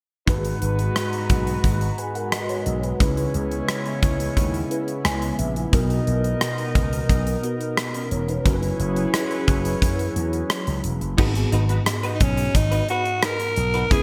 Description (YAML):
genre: 1980s-style pop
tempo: 88 BPM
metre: 4/4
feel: straight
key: G# minor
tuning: A4 = 439 Hz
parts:
  - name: tine electric piano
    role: accompaniment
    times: 0.3-14.0 s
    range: G#2 to G#5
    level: -30 LUFS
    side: equal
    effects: ensemble chorus
  - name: lush unison pad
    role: sustained chords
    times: 0.6-11.2 s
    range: C#3 to A#5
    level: -33 LUFS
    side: equal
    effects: chorus, phaser, shimmer reverb
  - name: dark horn section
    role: stabs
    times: 0.3-10.8 s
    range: F#3 to D#5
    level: -34 LUFS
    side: equal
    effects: shimmer reverb
  - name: slap bass with an envelope filter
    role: bass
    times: 0.3-14.0 s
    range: E1 to F#2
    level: -27 LUFS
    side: equal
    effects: none
  - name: gated 80s drum kit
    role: drums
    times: 0.3-14.0 s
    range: crash cymbal, hi-hat, kick drum, rim click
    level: -26 LUFS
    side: equal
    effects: gated reverb
  - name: direct-recorded clean electric guitar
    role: riff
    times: 11.2-14.0 s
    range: C#4 to B4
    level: -33 LUFS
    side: equal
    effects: ensemble chorus, shimmer reverb, delay
  - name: raspy alto saxophone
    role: melody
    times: 12.2-14.0 s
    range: C#4 to A#4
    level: -25 LUFS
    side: equal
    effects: shimmer reverb
room: light reverb, studio reverb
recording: bright 1980s-style digital production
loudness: -23 LUFS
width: mono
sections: 0.3-11.2 A section; 11.2-14.0 B section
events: tine electric piano fill 4.7-5.7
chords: 0.3 G#m7; 3.0 C#m7; 5.7 Bmaj7; 8.5 F#7sus4; 11.2 G#m7